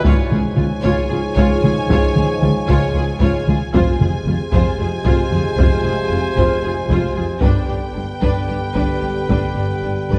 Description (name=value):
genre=cinematic, epic orchestral film score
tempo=228 BPM (eighths)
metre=7/8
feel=straight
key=unclear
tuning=A4 = 440 Hz
part: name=warm symphonic violin section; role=melody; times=0.0-10.2 s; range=G5 to G#5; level=-32 LUFS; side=equal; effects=none
part: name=warm symphonic viola section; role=accompaniment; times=0.0-10.2 s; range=D4 to E#4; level=-28 LUFS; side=equal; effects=none
part: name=dark French horn section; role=sustained chords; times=0.0-10.2 s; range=G#3 to G#4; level=-30 LUFS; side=equal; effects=none
part: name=dark trombone section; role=sustained chords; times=0.0-10.2 s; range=G#2 to G3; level=-28 LUFS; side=equal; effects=none
part: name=warm symphonic double bass section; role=bass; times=0.0-10.2 s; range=F1 to C#2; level=-26 LUFS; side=equal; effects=none
part: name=warm symphonic violin section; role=second line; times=0.1-10.2 s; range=D4 to C#5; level=-29 LUFS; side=equal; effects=none
part: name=clear trumpet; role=stabs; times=0.1-10.2 s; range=B4 to C#5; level=-31 LUFS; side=equal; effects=none
part: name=warm symphonic cello section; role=bass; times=0.1-10.2 s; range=C#2 to G2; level=-26 LUFS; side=equal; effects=none
part: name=taiko ensemble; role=drums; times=0.1-10.2 s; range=none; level=-21 LUFS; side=equal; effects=none
room=moderate scoring stage reverb, RT60 2.1 s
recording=dark, warm production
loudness=-17 LUFS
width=mono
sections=0.0-10.2 A section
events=none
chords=0.0 C#; 3.7 Fm; 7.4 G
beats=| 0.05 0.31 0.57 0.84 1.10 1.37 1.63 | 1.90 2.16 2.42 2.69 2.95 3.21 3.48 | 3.74 4.00 4.26 4.53 4.79 5.05 5.32 | 5.58 5.84 6.10 6.37 6.63 6.89 7.16 | 7.42 7.68 7.95 8.21 8.48 8.75 9.02 | 9.29 9.56 9.84 10.11